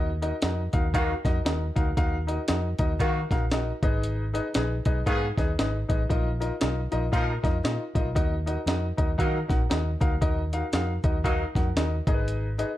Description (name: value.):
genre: uptempo 1960s-style soul.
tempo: 116 BPM.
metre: 4/4.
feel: swing 60% on 8ths.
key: Eb minor.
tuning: A4 = 443 Hz.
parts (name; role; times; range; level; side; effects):
clear concert grand piano; accompaniment; 0.0-12.7 s; Eb4 to Gb5; -30 LUFS; left 2 dB; none.
vintage muted fingered electric bass; bass; 0.0-12.6 s; Ab1 to Eb3; -28 LUFS; equal; none.
breakbeat sampler-style drum kit; drums; 0.2-12.7 s; hi-hat, kick drum, snare drum; -27 LUFS; equal; none.
warm horn section; second line; 0.9-11.4 s; Eb3 to Bb4; -31 LUFS; right 1 dB; none.
room: light reverb, small room reverb.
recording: dark, warm production.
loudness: -24 LUFS.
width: side -14 dB against mid.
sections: 0.0-12.8 A section.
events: none.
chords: 0.0 Ebm; 3.8 Abm; 6.1 Bbsus4; 8.2 Ebm; 12.0 Abm.